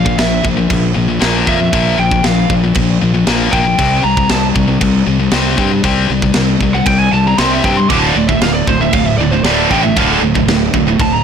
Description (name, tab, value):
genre	heavy metal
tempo	117 BPM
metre	4/4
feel	straight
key	unclear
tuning	A4 = 441 Hz
part	lead guitar through a small cranked amp	melody	0.0-11.2 s	A4 to D6	-18 LUFS	right 2 dB	overdrive, digital delay
part	high-gain distorted guitar	riff	0.0-11.2 s	D2 to C4	-15 LUFS	left 8 dB	distortion
part	fuzz fingered electric bass	bass	0.0-11.2 s	D1 to G2	-17 LUFS	right 1 dB	overdrive
part	tight metal drum kit	drums	0.1-11.1 s	crash cymbal, kick drum, snare drum	-17 LUFS	right 2 dB	none
part	tight distorted guitar	riff	7.9-11.2 s	D2 to D3	-15 LUFS	right 15 dB	distortion
room	studio reverb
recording	blown-out, overdriven recording, overdrive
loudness	-10 LUFS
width	side -7 dB against mid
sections	0.0-11.2 A section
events	lead electric guitar solo 0.0-11.2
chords	0.0 Bb5; 3.8 C5; 7.9 D5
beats	0.19 0.70 1.22 | 1.73 2.25 2.76 3.28 | 3.79 4.31 4.82 5.33 | 5.85 6.36 6.88 7.39 | 7.91 8.42 8.94 9.45 | 9.96 10.48 10.99